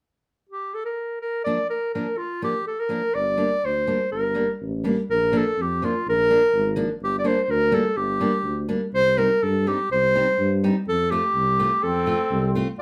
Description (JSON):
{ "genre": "alpine folk, alpine dance band", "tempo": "124 BPM", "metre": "2/4", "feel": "straight", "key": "Bb major", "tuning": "A4 = 439 Hz", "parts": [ { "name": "clear clarinet", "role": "melody", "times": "0.5-12.8 s", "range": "F4 to D5", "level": "-24 LUFS", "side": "equal", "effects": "none" }, { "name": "fingerpicked steel-string acoustic guitar", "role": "accompaniment", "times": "1.5-12.7 s", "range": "F3 to F4", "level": "-28 LUFS", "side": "equal", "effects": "none" }, { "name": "mellow tuba", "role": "bass", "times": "3.1-12.6 s", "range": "G1 to G2", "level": "-29 LUFS", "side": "equal", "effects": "none" }, { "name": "clear trumpet", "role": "second line", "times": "11.8-12.8 s", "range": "C4", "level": "-30 LUFS", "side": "equal", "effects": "none" } ], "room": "wet studio ambience, RT60 0.5 s", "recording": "band playing live in one room", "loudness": "-22 LUFS", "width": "mono", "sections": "1.2-5.1 A section; 5.1-12.8 B section", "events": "none", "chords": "0.2 N.C.; 1.2 Bb; 3.1 Gm; 5.1 Bb; 7.0 Gm; 8.9 Cm; 10.9 F" }